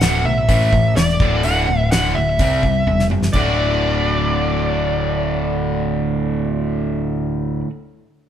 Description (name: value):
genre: classic rock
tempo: 126 BPM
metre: 4/4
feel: straight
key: D major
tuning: A4 = 440 Hz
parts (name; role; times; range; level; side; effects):
- smooth overdriven lead guitar; melody; 0.0-7.6 s; D5 to F#5; -21 LUFS; equal; none
- cranked stack guitar; riff; 0.0-7.7 s; D2 to F#4; -20 LUFS; equal; overdrive
- growling picked electric bass; bass; 0.0-7.6 s; D1 to C2; -21 LUFS; equal; overdrive
- damped 70s drum kit; drums; 0.0-3.4 s; crash cymbal, hi-hat, kick drum, snare drum, toms; -20 LUFS; equal; none
room: wet stone room reverb, RT60 1.3 s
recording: band playing live in one room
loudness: -16 LUFS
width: side -10 dB against mid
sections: 0.0-3.3 A section; 3.3-7.2 B section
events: drum fill 2.9-3.3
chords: 0.5 A5; 1.2 D; 2.4 C; 3.3 D